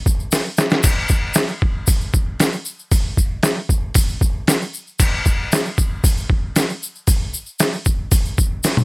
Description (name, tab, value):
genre	rock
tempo	115 BPM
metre	4/4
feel	straight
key	none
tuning	none
part	trip hop sampler-style drum kit	drums	0.1-8.8 s	crash cymbal, hi-hat, kick drum, snare drum, toms	-16 LUFS	equal	none
part	tube shaker	percussion	0.1-8.8 s	none	-24 LUFS	left 2 dB	none
room	light reverb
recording	none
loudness	-16 LUFS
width	side -25 dB against mid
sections	0.0-8.8 A section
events	drum fill 0.3-0.8, 8.6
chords	none